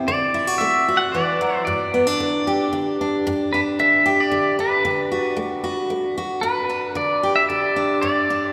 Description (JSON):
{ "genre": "country", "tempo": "113 BPM", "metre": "3/4", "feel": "straight", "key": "G major", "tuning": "A4 = 441 Hz", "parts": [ { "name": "picked steel-string acoustic guitar", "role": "accompaniment", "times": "0.0-8.5 s", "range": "G2 to G4", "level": "-24 LUFS", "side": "equal", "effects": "none" }, { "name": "pedal steel guitar", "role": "melody", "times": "0.1-8.5 s", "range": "B4 to F#5", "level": "-23 LUFS", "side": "equal", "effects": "none" } ], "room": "wet cathedral reverb, RT60 5.0 s", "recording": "recorded in a church or concert hall", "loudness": "-20 LUFS", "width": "mono", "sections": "0.0-8.5 A section", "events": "none", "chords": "0.1 D; 1.7 G5; 4.8 D; 6.4 G" }